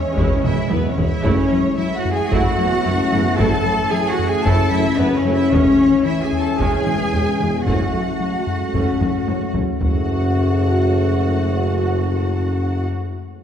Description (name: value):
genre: cinematic, hybrid orchestral and electronic film score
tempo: 112 BPM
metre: 4/4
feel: straight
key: F# minor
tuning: A4 = 436 Hz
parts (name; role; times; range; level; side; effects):
- warm symphonic violin section; melody; 0.0-12.8 s; B4 to A5; -29 LUFS; left 2 dB; none
- clear studio violin section; second line; 0.0-12.8 s; B4 to A5; -29 LUFS; equal; none
- deep dark ambient pad; sustained chords; 0.0-12.9 s; G#3 to E5; -26 LUFS; left 2 dB; chorus, built-in reverb
- mellow French horn section; sustained chords; 0.0-12.8 s; E3 to F#4; -24 LUFS; left 4 dB; none
- warm trombone section; sustained chords; 0.0-12.8 s; C#3 to C#4; -30 LUFS; right 2 dB; none
- round analog bass; riff; 0.0-9.7 s; E2 to F#3; -24 LUFS; left 1 dB; none
- rich symphonic cello section; bass; 0.0-12.9 s; B3 to A4; -24 LUFS; right 1 dB; none
- clear symphonic viola section; accompaniment; 0.2-12.9 s; G#3 to F#4; -28 LUFS; right 2 dB; none
- mellow tuba; bass; 0.2-12.9 s; E1 to F#1; -26 LUFS; right 1 dB; none
- rich studio double bass section; bass; 0.2-12.9 s; E2 to F#2; -24 LUFS; equal; none
- taiko ensemble; drums; 0.2-9.9 s; none; -24 LUFS; equal; none
room: wet scoring stage reverb, RT60 1.8 s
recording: heard from further back in the room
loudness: -16 LUFS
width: side -8 dB against mid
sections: 0.0-9.8 A section; 9.8-13.4 B section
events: drum fill 0.4-1.2, 9.0-9.8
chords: 0.0 C#m/E; 1.2 F#m7; 5.5 C#m/E; 7.7 F#m